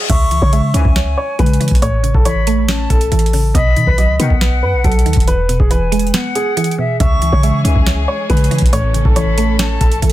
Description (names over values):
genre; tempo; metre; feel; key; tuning
hip hop, trap; 139 BPM; 4/4; half-time; C# minor; A4 = 442 Hz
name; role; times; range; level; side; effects
dark baby grand piano; melody; 0.0-10.1 s; G#4 to E5; -21 LUFS; equal; ping-pong delay
concert flute; second line; 0.1-10.0 s; E5 to C#6; -23 LUFS; left 3 dB; ping-pong delay
mallet-like synth pluck; accompaniment; 0.1-10.1 s; E2 to C#5; -20 LUFS; right 2 dB; chorus
clean 808-style bass; bass; 0.1-10.1 s; E1 to C#3; -16 LUFS; equal; none
booming analog drum machine; drums; 0.1-10.1 s; crash cymbal, hi-hat, kick drum, snare drum; -15 LUFS; equal; none
mellow brass ensemble; stabs; 0.7-0.9, 4.2-4.3, 7.6-7.8 s; B1 to E3; -27 LUFS; left 6 dB; none
dark studio string section; sustained chords; 7.0-10.1 s; E3 to A4; -25 LUFS; left 2 dB; none
room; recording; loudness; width
small room ambience; dense, heavily limited modern master; -11 LUFS; side -14 dB against mid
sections
0.1-10.1 A section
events
break 6.1-7.0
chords
0.1 C#m; 1.8 A; 3.5 B; 5.3 E; 7.0 C#m; 8.7 A